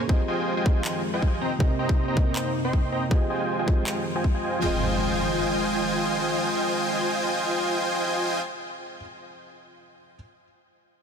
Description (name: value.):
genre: future bass.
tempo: 159 BPM.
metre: 4/4.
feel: swing 54% on 16ths, half-time.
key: F minor.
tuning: A4 = 440 Hz.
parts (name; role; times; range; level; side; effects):
felt-muted upright piano; accompaniment; 0.0-10.2 s; Bb2 to Eb5; -31 LUFS; right 1 dB; vintage 12-bit sampler grit, sidechain pumping, ping-pong delay.
airy breathy pad; sustained chords; 0.0-8.4 s; C3 to F4; -32 LUFS; equal; chorus, sidechain pumping.
dense compressed supersaw; riff; 0.1-8.4 s; C4 to C6; -26 LUFS; equal; sidechain pumping, low-pass filter, ping-pong delay.
electronic kick drum; drums; 0.1-4.3 s; none; -22 LUFS; equal; none.
electronic handclaps; drums; 0.8-3.9 s; none; -37 LUFS; equal; none.
impact; sound effects; 4.6-9.0 s; none; -31 LUFS; equal; none.
room: light reverb, digital ambience.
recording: dense, heavily limited modern master.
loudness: -22 LUFS.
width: side -7 dB against mid.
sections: 0.0-4.6 A section; 4.6-7.6 B section.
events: filter sweep on supersaw synth 0.0-4.6.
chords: 0.1 Fm7; 1.4 Cm7; 3.1 Fm7.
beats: | 0.09 0.47 0.85 1.22 | 1.60 1.98 2.36 2.73 | 3.11 3.49 3.87 4.24 | 4.62 5.00 5.38 5.75 | 6.13 6.51 6.88 7.26.